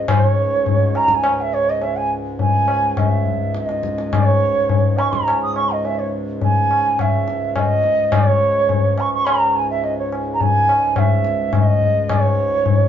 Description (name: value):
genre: indian classical, Hindustani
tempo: 105 BPM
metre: 7/4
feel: straight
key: C# raga shivaranjani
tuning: A4 = 440 Hz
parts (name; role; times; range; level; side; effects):
- mellow bansuri; melody; 0.0-12.9 s; C#5 to D#6; -18 LUFS; right 2 dB; none
- pedal harmonium; drone; 0.0-12.9 s; C#2 to G#2; -26 LUFS; equal; none
- tabla; percussion; 0.1-12.9 s; none; -19 LUFS; left 3 dB; none
room: wet large studio reverb, RT60 1.1 s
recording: band playing live in one room, nothing above 7.5 kHz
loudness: -15 LUFS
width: side -9 dB against mid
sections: 0.1-12.9 A section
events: speeding up 0.0-12.9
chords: none